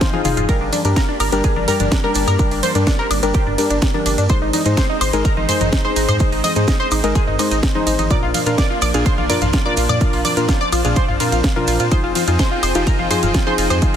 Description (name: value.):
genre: progressive house.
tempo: 126 BPM.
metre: 4/4.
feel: straight.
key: unclear.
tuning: A4 = 440 Hz.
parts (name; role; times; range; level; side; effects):
lush unison pad; sustained chords; 0.0-14.0 s; F3 to G5; -26 LUFS; equal; chorus, sidechain pumping.
deep mellow chord stab; stabs; 0.0-14.0 s; Bb2 to C5; -22 LUFS; left 3 dB; chorus, sidechain pumping, dub echo.
electronic kick drum; drums; 0.0-13.9 s; none; -18 LUFS; equal; none.
house drum kit; drums; 0.0-14.0 s; hi-hat, ride cymbal, snare drum, toms, woodblock; -24 LUFS; right 1 dB; overdrive.
maracas; percussion; 0.0-13.9 s; none; -30 LUFS; right 6 dB; none.
tight sequenced synth; arpeggios; 0.1-14.0 s; D4 to Eb5; -21 LUFS; equal; chorus, sidechain pumping, dub echo.
electronic congas and toms; percussion; 0.1-13.8 s; none; -26 LUFS; left 3 dB; sidechain pumping on perc, sidechain pumping on toms.
round analog bass; bass; 0.2-14.0 s; F1 to Bb2; -21 LUFS; right 1 dB; sidechain pumping.
room: light reverb.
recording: dense, heavily limited modern master.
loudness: -14 LUFS.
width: side -9 dB against mid.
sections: 0.0-14.0 A section.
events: drum fill 0.0-0.5.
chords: 0.5 Gm; 4.3 Ab; 8.1 Bb; 11.9 Fm7.